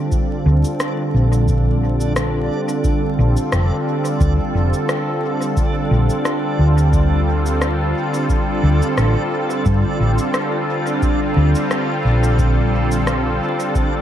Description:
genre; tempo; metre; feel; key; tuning
ambient dub; 88 BPM; 4/4; swing 55% on 16ths; D minor; A4 = 441 Hz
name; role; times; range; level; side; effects
warm analog pad; sustained chords; 0.0-14.0 s; D3 to A4; -20 LUFS; equal; chorus
backwards swelling texture; texture; 0.0-14.0 s; D4; -28 LUFS; right 1 dB; built-in reverb
electronic cabasa and rim click; drums; 0.1-13.9 s; none; -27 LUFS; left 1 dB; dub echo
electronic kick drum; drums; 0.1-13.9 s; none; -20 LUFS; equal; none
hollow-body short-scale fingered electric bass; bass; 0.5-13.4 s; F1 to G2; -16 LUFS; equal; none
room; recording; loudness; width
moderate plate reverb, RT60 2.2 s; dreamy mix soaked in reverb, vinyl crackle; -15 LUFS; side -11 dB against mid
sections
0.0-14.0 A section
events
none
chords
0.0 Dm7; 1.5 Bbmaj9; 6.9 Dm7; 12.4 Bbmaj9

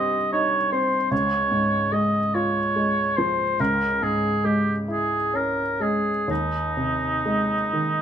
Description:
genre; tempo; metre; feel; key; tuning
classical, romantic duo for oboe and grand piano; 41-50 BPM (dotted quarters); 12/8; rubato; unclear; A4 = 440 Hz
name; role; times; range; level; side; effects
mellow oboe; melody; 0.0-8.0 s; Eb4 to Eb5; -22 LUFS; equal; none
warm baby grand piano; accompaniment; 0.0-8.0 s; C2 to G4; -25 LUFS; equal; none
room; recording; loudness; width
moderate large studio reverb, RT60 1.4 s; minimal, uncompressed stereo recording; -20 LUFS; side -9 dB against mid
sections
0.0-8.0 A section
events
none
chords
0.0 Cm; 1.1 Db; 3.6 Dbm; 6.3 Ab/Eb

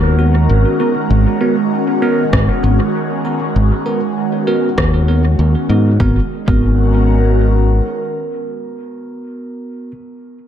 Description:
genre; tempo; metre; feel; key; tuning
ambient dub; 98 BPM; 4/4; swing 56% on 16ths; G# minor; A4 = 440 Hz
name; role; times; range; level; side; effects
airy breathy pad; sustained chords; 0.0-9.2 s; D#3 to A#4; -18 LUFS; right 1 dB; chorus, phaser
fingered electric bass; bass; 0.0-7.8 s; G#1 to G#2; -12 LUFS; equal; none
barky tine electric piano; stabs; 0.2-9.9 s; B3 to A#4; -20 LUFS; right 2 dB; phaser, low-pass filter, dub echo
electronic kick drum; drums; 2.3-6.6 s; none; -18 LUFS; equal; overdrive
electronic rim click; drums; 2.3-4.9 s; none; -25 LUFS; equal; overdrive, dub echo
room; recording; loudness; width
moderate echo chamber reverb, RT60 1.3 s; none; -12 LUFS; side -10 dB against mid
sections
0.0-6.0 A section; 6.0-8.4 B section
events
none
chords
0.0 G#m9

